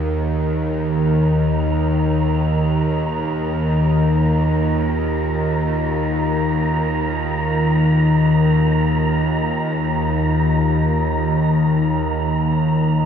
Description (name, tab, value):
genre	dark ambient drone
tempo	free time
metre	none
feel	none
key	unclear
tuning	A4 = 440 Hz
part	deep dark ambient pad	sustained chords	0.0-13.1 s	Eb3 to F5	-30 LUFS	equal	chorus, built-in reverb, shimmer reverb
part	bowed-like drone	drone	0.0-13.1 s	Eb2 to Eb3	-17 LUFS	equal	built-in reverb
part	wind-like tuned noise texture	texture	0.1-13.1 s	Bb5	-26 LUFS	right 2 dB	built-in reverb, shimmer reverb
room	wet cathedral reverb, RT60 5.7 s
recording	in a vast, echoing space, cassette tape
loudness	-16 LUFS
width	side -8 dB against mid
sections	0.0-13.1 A section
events	fade-out on ambient pad 0.0-13.1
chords	0.0 Bb5/Eb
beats	free time